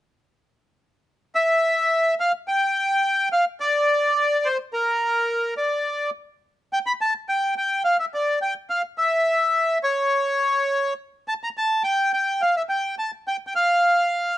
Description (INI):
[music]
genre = tango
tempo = 106 BPM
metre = 4/4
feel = rubato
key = unclear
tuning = A4 = 439 Hz
[part]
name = bandoneon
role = solo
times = 1.4-14.4 s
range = Bb4 to B5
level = -19 LUFS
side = equal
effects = none
[sound]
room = light reverb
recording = nothing above 10.9 kHz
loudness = -20 LUFS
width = side -14 dB against mid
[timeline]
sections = 0.0-2.2 A section; 2.2-14.4 B section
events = none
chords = none